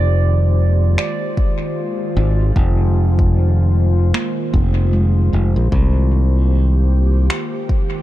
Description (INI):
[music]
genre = ambient dub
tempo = 76 BPM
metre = 4/4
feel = swing 59% on 16ths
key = F dorian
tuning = A4 = 440 Hz
[part]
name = airy breathy pad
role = sustained chords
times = 0.0-8.0 s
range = Eb3 to C5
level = -24 LUFS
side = equal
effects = chorus, vintage 12-bit sampler grit
[part]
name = handpan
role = arpeggios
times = 0.0-5.9 s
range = Ab3 to D5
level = -27 LUFS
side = right 4 dB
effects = vintage 12-bit sampler grit, tape echo
[part]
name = modern bright fingered electric bass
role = bass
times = 0.0-7.3 s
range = F1 to C2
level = -14 LUFS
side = equal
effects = none
[part]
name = electronic finger snaps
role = drums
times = 1.0-7.5 s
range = none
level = -28 LUFS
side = left 1 dB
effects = dub echo
[part]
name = electronic kick drum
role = drums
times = 1.4-7.9 s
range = none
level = -17 LUFS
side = equal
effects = overdrive
[sound]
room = little or no reverb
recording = dark, warm production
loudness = -14 LUFS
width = side -15 dB against mid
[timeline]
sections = 0.0-8.0 A section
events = none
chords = 0.0 Fm7; 5.7 Cm7